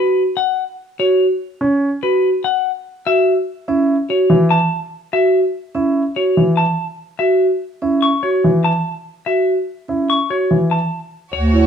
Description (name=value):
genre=classical, minimalist pattern music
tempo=145 BPM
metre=5/4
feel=straight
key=unclear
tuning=A4 = 444 Hz
part: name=semi-hollow electric guitar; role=melody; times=0.0-11.6 s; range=B4 to C#6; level=-19 LUFS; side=left 4 dB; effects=none
part: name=vibraphone with soft mallets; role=arpeggios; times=0.0-11.7 s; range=C#4 to F#4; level=-16 LUFS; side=right 1 dB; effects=none
part: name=warm grand piano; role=accompaniment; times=1.6-10.8 s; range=E3 to E4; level=-17 LUFS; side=equal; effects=none
part: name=mellow French horn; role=second line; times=11.3-11.7 s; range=C#5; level=-27 LUFS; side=right 1 dB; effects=none
part: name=clear studio string section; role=sustained chords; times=11.3-11.7 s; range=F#4 to C#5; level=-24 LUFS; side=right 4 dB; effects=none
part: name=warm bass clarinet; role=bass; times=11.3-11.7 s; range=D2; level=-13 LUFS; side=equal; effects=none
room=light reverb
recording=dark, warm production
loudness=-14 LUFS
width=side -7 dB against mid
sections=0.0-11.3 A section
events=none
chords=0.0 N.C.; 3.1 F#5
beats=0.16 0.57 | 0.99 1.40 1.82 2.23 2.64 | 3.06 3.47 3.89 4.30 4.71 | 5.13 5.54 5.96 6.37 6.78 | 7.20 7.61 8.02 8.44 8.85 | 9.27 9.68 10.09 10.51 10.92 | 11.33